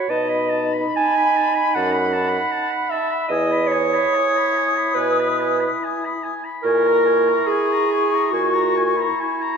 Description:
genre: classical, slow romantic movement for wind quintet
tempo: 65-80 BPM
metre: 4/4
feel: rubato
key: unclear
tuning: A4 = 439 Hz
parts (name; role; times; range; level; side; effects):
- clear oboe; second line; 0.0-9.6 s; G#5 to B5; -27 LUFS; left 4 dB; none
- clear French horn; accompaniment; 0.0-9.6 s; D#4 to E4; -29 LUFS; right 2 dB; none
- clear clarinet; accompaniment; 0.0-9.6 s; E4 to G#5; -20 LUFS; right 5 dB; none
- silver concert flute; melody; 0.1-9.6 s; B5 to D#6; -24 LUFS; left 9 dB; none
- dark bassoon; bass; 0.1-9.1 s; E2 to B2; -22 LUFS; left 1 dB; none
room: wet concert hall reverb, RT60 1.9 s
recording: lossy compression artefacts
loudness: -17 LUFS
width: side -6 dB against mid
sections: 0.0-9.6 A section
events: none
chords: 0.1 B7; 3.3 Emaj7; 6.6 A#m7b5

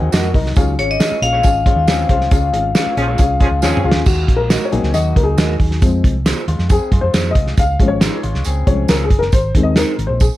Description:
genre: uptempo 1960s-style soul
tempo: 137 BPM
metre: 4/4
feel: straight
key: unclear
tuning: A4 = 442 Hz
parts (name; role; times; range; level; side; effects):
- dark upright piano; accompaniment; 0.0-10.3 s; Eb3 to Ab5; -20 LUFS; left 4 dB; none
- electric guitar through a small old amp; riff; 0.0-9.1 s; Gb3 to Ab4; -28 LUFS; left 4 dB; none
- hollow-body short-scale fingered electric bass; bass; 0.0-10.3 s; Gb1 to Gb2; -19 LUFS; equal; none
- electric guitar at the edge of break-up; stabs; 0.1-9.9 s; Eb4 to Eb5; -24 LUFS; right 4 dB; none
- warm soul drum kit; drums; 0.1-10.3 s; crash cymbal, hi-hat, kick drum, snare drum, toms; -15 LUFS; equal; none
- tambourine; percussion; 0.1-10.3 s; none; -32 LUFS; right 11 dB; none
- vibraphone with hard mallets; melody; 0.8-3.6 s; Db5 to F5; -18 LUFS; left 4 dB; tape echo
- warm horn section; second line; 3.0-4.0 s; F3 to Ab4; -24 LUFS; right 2 dB; none
room: small room ambience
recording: none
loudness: -13 LUFS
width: side -15 dB against mid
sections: 0.0-4.1 A section; 4.1-10.4 B section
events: band accent 2.3-4.1; drum fill 3.6-4.1; upright piano solo 4.1-10.4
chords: 0.0 Ebm; 0.6 Db; 4.1 Ebm; 5.8 Fm; 7.6 Db; 9.3 Ab

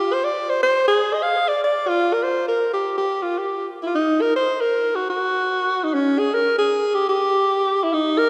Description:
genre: jazz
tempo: 242 BPM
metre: 4/4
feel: swing 60% on 8ths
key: Ab major from 3.9 s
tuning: A4 = 442 Hz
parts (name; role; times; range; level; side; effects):
- breathy alto saxophone; solo; 0.0-8.3 s; Db4 to F5; -20 LUFS; equal; none
room: wet church reverb, RT60 3.0 s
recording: recorded in a church or concert hall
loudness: -20 LUFS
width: mono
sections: 0.0-3.9 A section; 3.9-8.3 B section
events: none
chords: none

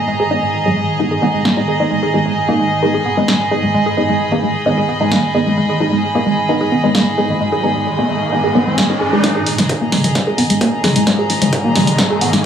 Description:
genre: driving peak-time techno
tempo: 131 BPM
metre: 4/4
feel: straight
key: G# minor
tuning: A4 = 439 Hz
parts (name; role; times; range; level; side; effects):
- woody wave-folded pluck; riff; 0.0-12.4 s; F#3 to G#4; -18 LUFS; right 1 dB; ensemble chorus, cassette tape, sidechain pumping, digital delay
- swarming drone; drone; 0.0-12.5 s; G#2 to D#3; -22 LUFS; right 1 dB; built-in reverb, sidechain pumping
- warm studio string section; texture; 0.0-12.5 s; G#4 to B5; -19 LUFS; right 1 dB; sidechain pumping
- filtered dub chord stab; stabs; 0.3-12.4 s; G#3 to D#4; -20 LUFS; left 1 dB; phaser, wide subtle chorus, sidechain pumping, digital delay
- punchy analog drum machine; drums; 1.5-12.4 s; hi-hat, snare drum, toms; -16 LUFS; equal; low-pass filter on snare, sidechain pumping on hats, low-pass filter on hats, sidechain pumping on toms, low-pass filter on toms
- riser; sound effects; 6.5-12.5 s; none; -24 LUFS; equal; none
- electronic kick drum; drums; 9.2-12.1 s; none; -23 LUFS; equal; distortion, high-pass filter on kick
room: moderate plate reverb, RT60 1.4 s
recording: studio reverb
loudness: -13 LUFS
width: side -8 dB against mid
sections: 0.0-9.2 A section; 9.2-12.5 B section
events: riser 6.5-9.2, 9.2-12.5; build-up 9.2-12.5; drum fill 9.2-12.5; filter sweep on synth arpeggio sound 9.2-12.5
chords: 0.0 G#m

